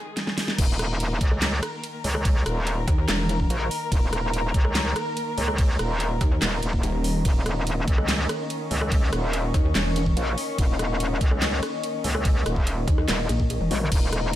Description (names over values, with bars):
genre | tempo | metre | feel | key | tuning
heavy wobble dubstep | 144 BPM | 4/4 | half-time | unclear | A4 = 441 Hz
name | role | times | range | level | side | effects
muted chamber string section | sustained chords | 0.0-14.4 s | Eb3 to Bb4 | -32 LUFS | left 2 dB | sidechain pumping
dubstep drum kit | drums | 0.2-14.4 s | crash cymbal, handclaps, hi-hat, ride cymbal, rim click, snare drum, toms | -29 LUFS | equal | studio reverb
metallic wobble bass | bass | 0.6-14.4 s | Eb1 to Db2 | -25 LUFS | equal | chorus, overdrive
electronic kick drum | drums | 0.6-14.0 s | none | -22 LUFS | equal | studio reverb
deep dark ambient pad | texture | 2.8-14.4 s | Bb4 to Db6 | -33 LUFS | left 1 dB | chorus, built-in reverb, sidechain pumping
pulsing pluck wobble bass | bass | 2.9-3.5, 6.2-10.2, 12.9-13.7 s | Eb1 to Eb2 | -24 LUFS | equal | chorus, overdrive
room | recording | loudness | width
little or no reverb | none | -21 LUFS | side -13 dB against mid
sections
0.6-14.4 A section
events
break 0.0-0.6; drum fill 0.2-0.6, 13.7; band accent 0.5; drop 0.6-14.4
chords
0.0 Eb5